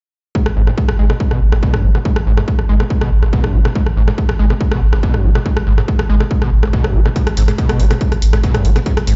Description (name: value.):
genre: driving peak-time techno.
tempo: 141 BPM.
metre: 4/4.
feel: straight.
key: G# minor.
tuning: A4 = 442 Hz.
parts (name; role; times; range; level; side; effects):
screaming distorted acid line; riff; 0.3-9.1 s; G#1 to G#3; -24 LUFS; equal; distortion, analog chorus, sidechain pumping, digital delay.
electronic kick drum; drums; 0.3-8.9 s; none; -19 LUFS; equal; overdrive, studio reverb.
saturated sub bass; bass; 0.5-9.2 s; G#1; -18 LUFS; equal; tube saturation, sidechain pumping, low-pass filter.
techno drum kit; drums; 0.5-9.2 s; hi-hat, rim click; -25 LUFS; equal; overdrive, studio reverb.
room: little or no reverb.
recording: played on a big sound system in a bare room, large studio reverb, nothing above 7.7 kHz.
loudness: -15 LUFS.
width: mono.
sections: 0.3-9.2 A section.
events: filter sweep on acid bass 0.3-9.2.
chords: 0.3 G#m.